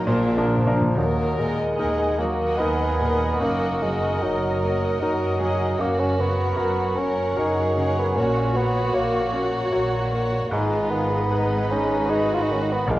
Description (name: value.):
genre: classical, romantic movement for piano and orchestra.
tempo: 76 BPM.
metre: 3/4.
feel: rubato.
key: Eb minor.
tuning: A4 = 441 Hz.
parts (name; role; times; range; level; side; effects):
clear grand piano; melody; 0.0-13.0 s; Bb1 to Db5; -26 LUFS; equal; none.
warm symphonic violin section; melody; 0.0-13.0 s; D5 to Gb5; -39 LUFS; left 3 dB; none.
warm chamber violin section; second line; 0.0-13.0 s; Bb3 to Bb4; -32 LUFS; equal; none.
dark symphonic viola section; accompaniment; 0.0-13.0 s; F4 to Eb5; -32 LUFS; equal; none.
rich chamber double bass section; bass; 0.0-13.0 s; Gb1 to Eb2; -30 LUFS; right 1 dB; none.
warm chamber cello section; bass; 0.0-13.0 s; Eb2 to Bb2; -31 LUFS; right 1 dB; none.
warm bassoon; accompaniment; 0.1-13.0 s; F3 to F4; -25 LUFS; right 1 dB; none.
clear tuba; bass; 0.1-0.8 s; Bb1; -31 LUFS; right 2 dB; none.
timpani; percussion; 0.1-0.9 s; Bb2; -29 LUFS; equal; none.
dark clarinet; second line; 1.0-13.0 s; Eb4 to Bb4; -33 LUFS; equal; none.
warm cor anglais; second line; 1.0-13.0 s; Bb4 to Eb5; -33 LUFS; equal; none.
mellow French horn section; sustained chords; 1.0-13.0 s; Eb4 to Bb4; -31 LUFS; left 2 dB; none.
room: moderate recital hall reverb, RT60 1.6 s.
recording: worn, warbling old tape, cassette tape, warbly pitch drift.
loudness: -20 LUFS.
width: side -16 dB against mid.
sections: 1.0-13.0 A section.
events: timpani fill 0.1-1.0.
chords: 0.1 Bb; 1.0 Ebm; 3.4 Ebm/Gb; 5.8 Gb; 8.2 Gb/Bb; 10.5 Abm.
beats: 0.08 | 0.97 1.80 2.59 | 3.40 4.21 5.01 | 5.80 6.58 7.37 | 8.16 8.95 9.74 | 10.53 11.31 12.10 | 12.88.